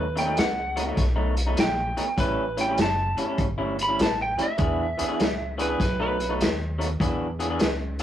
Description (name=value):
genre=electric blues shuffle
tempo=100 BPM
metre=4/4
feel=swing 66% on 8ths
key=unclear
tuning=A4 = 440 Hz
part: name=lightly driven lead guitar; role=melody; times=0.0-6.3 s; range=B4 to B5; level=-27 LUFS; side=right 2 dB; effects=none
part: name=electric guitar through a small old amp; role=riff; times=0.0-8.0 s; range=A2 to G#4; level=-28 LUFS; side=left 1 dB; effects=none
part: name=upright bass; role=bass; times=0.0-8.0 s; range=F#1 to E2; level=-30 LUFS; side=equal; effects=none
part: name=vintage drum kit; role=drums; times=0.2-8.0 s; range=hi-hat, kick drum, snare drum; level=-26 LUFS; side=equal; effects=none
room=light reverb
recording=rough rehearsal-room recording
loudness=-22 LUFS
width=side -11 dB against mid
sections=0.0-7.0 A section; 7.0-8.0 B section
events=none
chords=0.0 B7; 2.2 A7; 4.6 E7; 5.8 B7; 7.0 E7